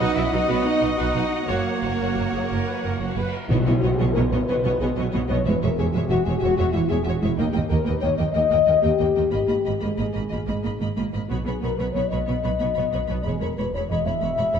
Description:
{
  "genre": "cinematic, heroic adventure film score",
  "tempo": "123 BPM (dotted quarters)",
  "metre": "12/8",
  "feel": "straight",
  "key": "B major from 3.5 s",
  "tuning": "A4 = 440 Hz",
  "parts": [
    { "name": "rich symphonic violin section", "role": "melody", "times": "0.0-14.6 s", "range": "A#4 to B5", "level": "-36 LUFS", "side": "left 3 dB", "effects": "none" },
    { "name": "clear oboe", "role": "second line", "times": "0.0-3.3 s", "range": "C#5 to D#5", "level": "-32 LUFS", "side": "right 3 dB", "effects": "none" },
    { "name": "mellow clarinet", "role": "second line", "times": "0.0-3.3 s", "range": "F#4", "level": "-34 LUFS", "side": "left 3 dB", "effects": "none" },
    { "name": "mellow concert flute", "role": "second line", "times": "0.0-3.3 s", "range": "F#5", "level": "-35 LUFS", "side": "left 2 dB", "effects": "none" },
    { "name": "warm symphonic violin section", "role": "second line", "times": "0.0-14.6 s", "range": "C#5 to F#5", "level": "-34 LUFS", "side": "left 2 dB", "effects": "none" },
    { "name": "rich symphonic viola section", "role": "accompaniment", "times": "0.0-14.6 s", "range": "G#3 to C#5", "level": "-31 LUFS", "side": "right 1 dB", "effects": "none" },
    { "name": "dark French horn section", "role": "sustained chords", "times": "0.0-14.6 s", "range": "F#3 to E5", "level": "-24 LUFS", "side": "left 6 dB", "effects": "none" },
    { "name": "rich symphonic cello section", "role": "bass", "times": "0.0-14.6 s", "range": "D#2 to E4", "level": "-27 LUFS", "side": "right 3 dB", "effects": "none" },
    { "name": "rich symphonic double bass section", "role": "bass", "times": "0.0-14.6 s", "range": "E1 to D#2", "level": "-26 LUFS", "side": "right 3 dB", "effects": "none" },
    { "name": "tam-tam", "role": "percussion", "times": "3.5-4.8 s", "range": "none", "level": "-32 LUFS", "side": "left 2 dB", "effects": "none" },
    { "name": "timpani", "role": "percussion", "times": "3.5-4.0 s", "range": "B2", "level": "-25 LUFS", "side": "left 1 dB", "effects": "none" }
  ],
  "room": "moderate scoring stage reverb, RT60 1.7 s",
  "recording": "none",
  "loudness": "-20 LUFS",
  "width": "side -7 dB against mid",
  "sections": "0.0-3.5 A section; 3.5-14.6 B section",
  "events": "band accent 3.5-3.8",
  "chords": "0.0 B; 1.5 F#; 3.5 Badd9; 5.5 E6; 7.4 D#; 9.3 G#madd9; 11.3 Badd9; 13.2 E6"
}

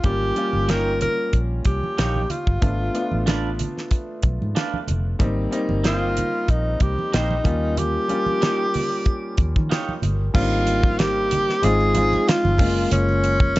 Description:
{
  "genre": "lush 1970s-style soul",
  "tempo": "93 BPM",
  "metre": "4/4",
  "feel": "swing 54% on 16ths",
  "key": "unclear",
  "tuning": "A4 = 440 Hz",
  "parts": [
    { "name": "breathy tenor saxophone", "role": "melody", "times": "0.0-13.6 s", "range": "Db4 to Bb4", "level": "-23 LUFS", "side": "equal", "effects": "none" },
    { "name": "warm concert grand piano", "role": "accompaniment", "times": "0.0-13.6 s", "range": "G3 to F4", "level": "-26 LUFS", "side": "left 1 dB", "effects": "none" },
    { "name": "vintage muted fingered electric bass", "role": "bass", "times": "0.0-13.6 s", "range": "F1 to Eb3", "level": "-23 LUFS", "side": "equal", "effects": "none" },
    { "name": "damped 70s drum kit", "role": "drums", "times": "0.0-13.6 s", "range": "crash cymbal, hi-hat, kick drum, snare drum", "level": "-21 LUFS", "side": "equal", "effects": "none" },
    { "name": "congas", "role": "percussion", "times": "0.0-13.5 s", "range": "none", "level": "-31 LUFS", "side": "right 3 dB", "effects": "none" },
    { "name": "electric guitar through a small old amp", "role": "riff", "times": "0.7-9.9 s", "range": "Bb3 to D5", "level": "-31 LUFS", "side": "right 4 dB", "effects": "spring reverb" },
    { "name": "triangle", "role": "percussion", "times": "10.3-13.6 s", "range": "none", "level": "-46 LUFS", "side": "right 12 dB", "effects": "none" }
  ],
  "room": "studio ambience",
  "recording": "nothing above 7.8 kHz",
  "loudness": "-19 LUFS",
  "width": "side -18 dB against mid",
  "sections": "0.0-10.3 A section; 10.3-13.6 B section",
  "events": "none",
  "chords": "0.0 Eb7; 2.6 Fdim7; 5.2 Cm7; 7.5 Eb7; 10.3 Abmaj9; 11.6 Fm9; 12.6 Gbmaj9"
}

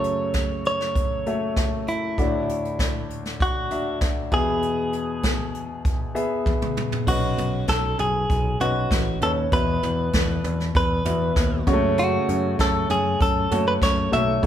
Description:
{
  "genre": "piano-driven pop",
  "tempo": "98 BPM",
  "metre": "4/4",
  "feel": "straight",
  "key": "F# dorian from 7.1 s",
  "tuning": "A4 = 442 Hz",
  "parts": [
    { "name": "direct-recorded clean electric guitar", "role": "melody", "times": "0.0-14.5 s", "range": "E4 to E5", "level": "-25 LUFS", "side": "equal", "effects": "none" },
    { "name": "clear concert grand piano", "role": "accompaniment", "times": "0.0-14.5 s", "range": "D2 to E5", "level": "-26 LUFS", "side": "left 1 dB", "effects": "none" },
    { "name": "jazz brush drum kit", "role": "drums", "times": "0.0-14.5 s", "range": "crash cymbal, hi-hat, kick drum, snare drum, toms", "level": "-25 LUFS", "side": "equal", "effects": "none" },
    { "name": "picked electric bass", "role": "bass", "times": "7.1-14.5 s", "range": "A1 to F#2", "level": "-26 LUFS", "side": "left 1 dB", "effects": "none" }
  ],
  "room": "moderate large studio reverb, RT60 1.2 s",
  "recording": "band playing live in one room",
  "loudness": "-20 LUFS",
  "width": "side -10 dB against mid",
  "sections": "0.0-7.1 A section; 7.1-14.5 B section",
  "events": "drum fill 6.5-7.1",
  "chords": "0.0 F#m7; 2.2 Dadd9; 4.3 E; 7.1 Badd9; 9.5 Esus2; 11.7 F#m"
}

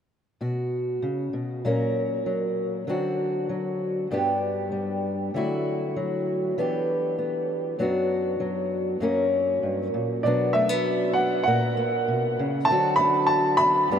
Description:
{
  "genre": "acoustic folk duo or small band",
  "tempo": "98 BPM",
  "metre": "4/4",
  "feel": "straight",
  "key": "B minor",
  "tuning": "A4 = 441 Hz",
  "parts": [
    { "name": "fingerpicked old ladder-braced acoustic guitar", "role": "accompaniment", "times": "0.4-14.0 s", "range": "F#2 to A#4", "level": "-24 LUFS", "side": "left 1 dB", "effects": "none" },
    { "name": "bright upright piano", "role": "melody", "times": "10.2-14.0 s", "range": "D5 to B5", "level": "-22 LUFS", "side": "right 1 dB", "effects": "tape echo" }
  ],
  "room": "wet huge ambient reverb, RT60 8.7 s",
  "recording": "in a vast, echoing space",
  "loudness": "-22 LUFS",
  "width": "side -8 dB against mid",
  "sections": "0.4-10.2 A section; 10.2-14.0 B section",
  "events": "none",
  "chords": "0.4 B5; 1.6 F#/A#; 2.9 D7; 4.1 G; 5.3 Dadd9; 6.6 Em7; 7.8 Bm/F#; 9.0 F#; 10.2 Bm; 11.5 F#/A#; 12.7 D7"
}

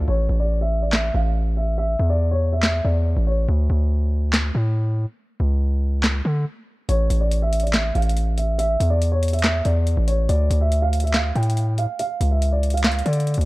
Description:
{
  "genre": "hip hop, trap",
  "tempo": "141 BPM",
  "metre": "4/4",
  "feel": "half-time",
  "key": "D harmonic minor",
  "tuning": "A4 = 440 Hz",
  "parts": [
    { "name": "dark concert grand piano", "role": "melody", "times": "0.0-3.5, 6.9-13.5 s", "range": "C#5 to G5", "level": "-25 LUFS", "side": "equal", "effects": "low-pass filter, tape echo" },
    { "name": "distorted 808-style bass", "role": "bass", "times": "0.0-13.5 s", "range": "A1 to D3", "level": "-19 LUFS", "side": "equal", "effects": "distortion" },
    { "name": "trap drum kit", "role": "drums", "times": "0.9-13.5 s", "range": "handclaps, hi-hat, snare drum", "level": "-24 LUFS", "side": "equal", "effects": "overdrive" }
  ],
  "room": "little or no reverb",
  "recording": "dark, warm production",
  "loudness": "-18 LUFS",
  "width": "side -20 dB against mid",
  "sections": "0.1-13.5 A section",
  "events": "break 0.1-6.9; filter sweep on grand piano 0.1-13.5",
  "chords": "0.1 A5; 3.5 D5; 6.9 A5; 10.3 D5"
}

